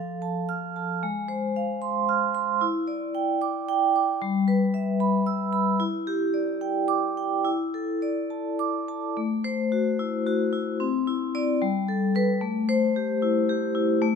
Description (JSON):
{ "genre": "classical, contemporary piece for solo vibraphone", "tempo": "74 BPM (dotted quarters)", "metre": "6/8", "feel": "rubato", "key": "A dorian", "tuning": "A4 = 440 Hz", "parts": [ { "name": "vibraphone with medium hard mallets", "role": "solo", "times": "0.0-14.2 s", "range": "F3 to F6", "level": "-23 LUFS", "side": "equal", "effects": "none" } ], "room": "light reverb", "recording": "close, detailed microphones", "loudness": "-23 LUFS", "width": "side -6 dB against mid", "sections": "0.0-9.2 A section; 9.2-14.2 B section", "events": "none", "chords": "0.0 F; 1.0 Ab6; 2.6 Em7; 4.2 G6; 5.8 Em7; 7.5 E7sus4; 9.2 Am6; 10.8 Cadd9; 11.6 Gadd9; 12.4 Am7" }